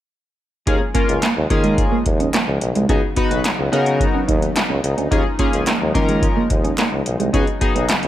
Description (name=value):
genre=early-eighties boogie funk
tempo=108 BPM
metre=4/4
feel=straight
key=Eb minor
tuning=A4 = 440 Hz
part: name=chorused polysynth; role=accompaniment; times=0.7-7.9 s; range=Bb3 to Cb5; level=-22 LUFS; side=left 3 dB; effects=none
part: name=chorused pulse-width pad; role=sustained chords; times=0.7-8.1 s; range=Db3 to Eb4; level=-27 LUFS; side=left 1 dB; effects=none
part: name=electric guitar at the edge of break-up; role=riff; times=0.7-7.9 s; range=Ab3 to Eb4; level=-23 LUFS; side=right 4 dB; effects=wide subtle chorus
part: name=clear tuba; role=bass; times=0.7-8.1 s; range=Cb2 to Eb3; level=-21 LUFS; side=equal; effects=none
part: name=electro analog drum machine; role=drums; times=0.7-8.1 s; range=handclaps, hi-hat, kick drum, snare drum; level=-20 LUFS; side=equal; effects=none
part: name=group handclap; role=percussion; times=1.2-8.0 s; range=none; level=-30 LUFS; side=right 2 dB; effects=none
room=digital ambience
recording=none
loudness=-16 LUFS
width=side -12 dB against mid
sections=0.7-8.1 A section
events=none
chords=0.7 Eb9sus4; 2.9 Db9sus4; 5.1 Eb9sus4; 7.3 Db9sus4